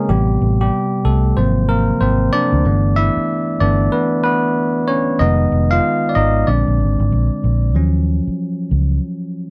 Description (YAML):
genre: R&B, neo-soul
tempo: 94 BPM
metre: 4/4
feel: swing 62% on 16ths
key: unclear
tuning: A4 = 436 Hz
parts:
  - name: bell-like tine electric piano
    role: accompaniment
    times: 0.0-9.5 s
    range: C3 to F5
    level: -19 LUFS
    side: equal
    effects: none
  - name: vintage muted fingered electric bass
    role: bass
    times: 0.1-9.0 s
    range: F1 to Eb2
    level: -18 LUFS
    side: equal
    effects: none
room: little or no reverb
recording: dry, close 1970s-style studio recording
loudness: -16 LUFS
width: mono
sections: 0.0-9.5 A section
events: tine electric piano solo 0.0-9.5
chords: 0.1 Am7; 1.4 Ab13; 2.6 G69; 5.2 Fm7b5; 6.5 Bb7; 7.8 Ebm7